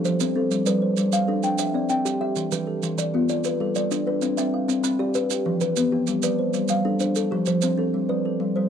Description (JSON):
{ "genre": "southern african traditional, mbira-style interlocking cycle", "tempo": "129 BPM (dotted quarters)", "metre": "12/8", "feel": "straight", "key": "G mixolydian", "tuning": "A4 = 439 Hz", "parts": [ { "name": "kalimba", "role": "arpeggios", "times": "0.0-8.7 s", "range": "E3 to B5", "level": "-24 LUFS", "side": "left 5 dB", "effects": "none" }, { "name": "kalimba", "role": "arpeggios", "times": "0.0-8.7 s", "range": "E3 to G5", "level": "-24 LUFS", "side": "right 5 dB", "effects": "none" }, { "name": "maracas", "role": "percussion", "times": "0.0-7.8 s", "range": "none", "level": "-32 LUFS", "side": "right 20 dB", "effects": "none" } ], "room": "small room ambience", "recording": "dry, close 1970s-style studio recording", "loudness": "-21 LUFS", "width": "side -8 dB against mid", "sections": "0.0-7.9 A section", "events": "none", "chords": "0.0 F; 0.5 G; 1.4 C; 2.4 Em; 3.3 G; 4.2 C; 5.1 Em; 6.1 G; 7.0 F; 7.9 G" }